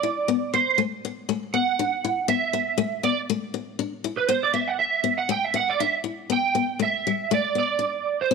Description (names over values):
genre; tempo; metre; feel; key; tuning
highlife; 120 BPM; 4/4; swing 55% on 16ths; G major; A4 = 440 Hz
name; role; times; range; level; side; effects
electric guitar at the edge of break-up; melody; 0.0-8.3 s; B4 to G5; -23 LUFS; right 7 dB; ensemble chorus
picked steel-string acoustic guitar; accompaniment; 0.0-8.3 s; G3 to E4; -26 LUFS; left 12 dB; none
room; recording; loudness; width
moderate echo chamber reverb, RT60 1.7 s; 1960s-style stereo with parts hard left and right; -22 LUFS; side -4 dB against mid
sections
0.0-6.3 A section; 6.3-8.3 B section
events
clean electric guitar solo 0.0-6.3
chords
0.0 Asus2; 6.3 G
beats
| 0.30 0.80 1.29 1.79 | 2.29 2.79 3.29 3.79 | 4.29 4.79 5.29 5.79 | 6.29 6.80 7.30 7.80 | 8.30